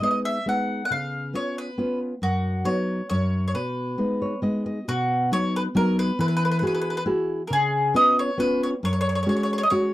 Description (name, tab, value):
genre	italian folk, Italian serenade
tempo	136 BPM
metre	3/4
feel	swing 53% on 8ths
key	B major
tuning	A4 = 442 Hz
part	mandolin	melody	0.0-9.9 s	F#4 to F#5	-24 LUFS	equal	none
part	nylon-string guitar	accompaniment	0.0-9.9 s	F#2 to D#5	-24 LUFS	equal	none
room	light reverb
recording	dry, close 1970s-style studio recording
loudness	-21 LUFS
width	side -15 dB against mid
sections	0.0-4.9 A section; 4.9-9.9 A section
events	nylon-string guitar fill 4.0-4.9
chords	0.0 G#m; 0.9 C#7; 2.2 B/F#; 3.1 N.C.; 3.5 B6; 4.9 B; 6.2 Eadd9; 7.5 C#7; 8.8 F#sus2